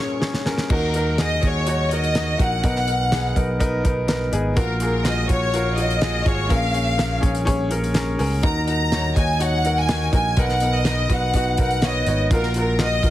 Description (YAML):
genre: piano-driven pop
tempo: 124 BPM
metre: 4/4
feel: straight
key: Eb minor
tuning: A4 = 439 Hz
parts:
  - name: clear studio violin section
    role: melody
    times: 0.0-13.1 s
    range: Bb4 to Bb5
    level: -24 LUFS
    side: equal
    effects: none
  - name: clear upright piano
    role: accompaniment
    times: 0.0-13.1 s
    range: Bb1 to Db5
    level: -24 LUFS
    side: left 1 dB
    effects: none
  - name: damped 70s drum kit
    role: drums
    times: 0.2-13.1 s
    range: crash cymbal, hi-hat, kick drum, snare drum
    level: -23 LUFS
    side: equal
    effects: none
  - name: picked electric bass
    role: bass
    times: 0.7-13.1 s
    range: Ab1 to Eb2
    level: -23 LUFS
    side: right 1 dB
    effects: none
room: light reverb, small room ambience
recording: heavily compressed radio sound, multiband compression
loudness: -18 LUFS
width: side -14 dB against mid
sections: 0.7-13.1 A section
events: drum fill 0.0-0.7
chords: 0.0 Bbm7; 0.7 Ebm; 2.6 Bmaj7; 4.6 Gbmaj7/Bb; 6.5 Bbm7; 8.4 Ebm; 10.4 Bmaj7; 12.3 Gbmaj7/Bb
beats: 0.22 | 0.70 1.18 1.67 2.15 | 2.63 3.12 3.60 4.08 | 4.57 5.05 5.54 6.02 | 6.50 6.99 7.47 7.95 | 8.44 8.92 9.40 9.89 | 10.37 10.86 11.34 11.82 | 12.30 12.79